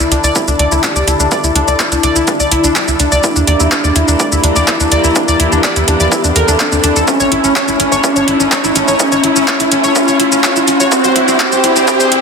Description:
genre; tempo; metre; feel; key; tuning
melodic techno; 125 BPM; 4/4; straight; unclear; A4 = 441 Hz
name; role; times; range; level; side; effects
expressive synth lead; melody; 0.0-12.2 s; C4 to A4; -17 LUFS; left 1 dB; chorus, sidechain pumping, ping-pong delay
dark chamber string section; sustained chords; 0.0-12.2 s; C3 to A4; -20 LUFS; left 1 dB; sidechain pumping, low-pass filter
analog pluck; arpeggios; 0.0-12.2 s; C4 to D5; -15 LUFS; equal; chorus, sidechain pumping, dub echo
tight sequencer bass; bass; 0.0-12.2 s; A1 to E2; -17 LUFS; equal; tube saturation, sidechain pumping
deep house drum kit; drums; 0.0-12.2 s; handclaps, hi-hat, shaker; -15 LUFS; equal; studio reverb
riser; sound effects; 2.0-12.2 s; none; -18 LUFS; right 2 dB; none
electronic kick drum; drums; 0.4-12.0 s; none; -20 LUFS; equal; high-pass filter on kick, studio reverb, high-pass filter on room
room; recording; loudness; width
moderate lush hall reverb, RT60 1.7 s, digital ambience; dense, heavily limited modern master, high-pass filter; -9 LUFS; side -5 dB against mid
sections
0.0-12.2 A section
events
build-up 0.0-12.2; filter sweep on analog synth lead 0.0-12.2; filter sweep on string section 0.0-12.2; riser 2.0-12.2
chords
0.0 Dsus2; 3.2 Edim; 7.1 A; 10.9 Cadd9

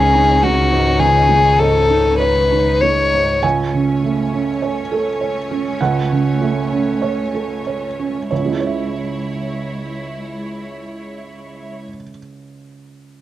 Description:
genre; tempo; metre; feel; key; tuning
neoclassical piano and strings; 46-53 BPM; 4/4; rubato; C# minor; A4 = 440 Hz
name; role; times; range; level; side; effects
warm violin; melody; 0.0-3.4 s; F#4 to C#5; -14 LUFS; left 3 dB; cassette tape
warm cello; second line; 0.0-2.2 s; C#4; -25 LUFS; right 6 dB; cassette tape
felt-muted upright piano; accompaniment; 0.0-13.2 s; C#2 to G#5; -20 LUFS; right 5 dB; cassette tape
rich symphonic string section; sustained chords; 0.0-11.8 s; D#3 to C#5; -26 LUFS; equal; cassette tape
rich double bass; bass; 0.0-3.4 s; C#2; -19 LUFS; equal; none
room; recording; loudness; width
light reverb; home recording on cassette; -14 LUFS; side -13 dB against mid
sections
0.0-3.4 A section; 3.4-8.3 B section; 8.3-13.2 C section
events
slowing down 0.0-8.3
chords
0.0 C#sus2; 3.4 A/C#; 8.3 C#m

